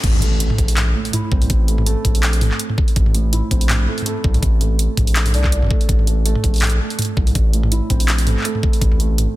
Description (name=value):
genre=half-time drum and bass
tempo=164 BPM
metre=4/4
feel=swing 55% on 16ths, half-time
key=unclear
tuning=A4 = 438 Hz
part: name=felt-muted upright piano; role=arpeggios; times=0.0-9.4 s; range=A2 to E4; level=-25 LUFS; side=right 3 dB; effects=tape echo
part: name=saturated sub bass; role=bass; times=0.0-9.3 s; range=G1 to C2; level=-17 LUFS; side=equal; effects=none
part: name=drum and bass drum kit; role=drums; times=0.0-9.3 s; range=crash cymbal, handclaps, hi-hat, toms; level=-22 LUFS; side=equal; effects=overdrive
part: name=electronic kick drum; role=drums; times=0.0-8.9 s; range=none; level=-18 LUFS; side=equal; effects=overdrive
part: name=impact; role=sound effects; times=0.0-1.5 s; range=none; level=-26 LUFS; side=equal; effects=none
room=digital ambience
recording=dense, heavily limited modern master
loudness=-15 LUFS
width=side -17 dB against mid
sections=0.0-9.4 A section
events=drop 0.0-9.4; impact 0.0-1.5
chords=0.0 Am